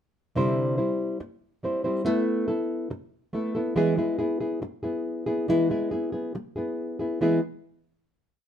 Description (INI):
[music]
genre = flamenco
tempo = 140 BPM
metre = 4/4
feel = straight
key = unclear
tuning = A4 = 442 Hz
[part]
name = nylon-string guitar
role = solo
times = 0.4-7.4 s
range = C3 to C5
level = -24 LUFS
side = equal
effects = none
[sound]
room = light reverb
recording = minimal, uncompressed stereo recording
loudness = -25 LUFS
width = side -9 dB against mid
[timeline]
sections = 0.4-7.2 groove; 7.2-8.5 final chord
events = none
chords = 0.4 Cadd9; 2.1 Asus2; 3.8 E